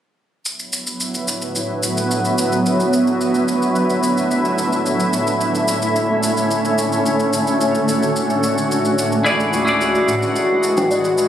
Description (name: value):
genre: sunset chillout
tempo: 109 BPM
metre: 4/4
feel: straight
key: unclear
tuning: A4 = 440 Hz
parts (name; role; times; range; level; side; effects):
- shimmering ambient pad; sustained chords; 0.9-11.3 s; A2 to F#4; -17 LUFS; equal; chorus, built-in reverb
- shaker; drums; 0.5-11.3 s; none; -26 LUFS; equal; small room reverb
- clean electric guitar; accompaniment; 9.2-11.3 s; E4 to D5; -18 LUFS; equal; auto-pan, digital delay
- kalimba; arpeggios; 9.3-11.1 s; F#4 to D5; -22 LUFS; left 1 dB; digital delay
- warm sub bass; bass; 9.3-11.3 s; A1 to A2; -28 LUFS; right 1 dB; none
- bongos; percussion; 9.5-10.9 s; none; -24 LUFS; left 1 dB; none
room: moderate lush hall reverb, RT60 1.9 s, small room ambience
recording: recorded on a phone in the room, studio reverb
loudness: -16 LUFS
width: side -10 dB against mid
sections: 0.5-11.3 A section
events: none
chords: 0.5 D69/A; 4.9 Aadd11; 9.3 E9/A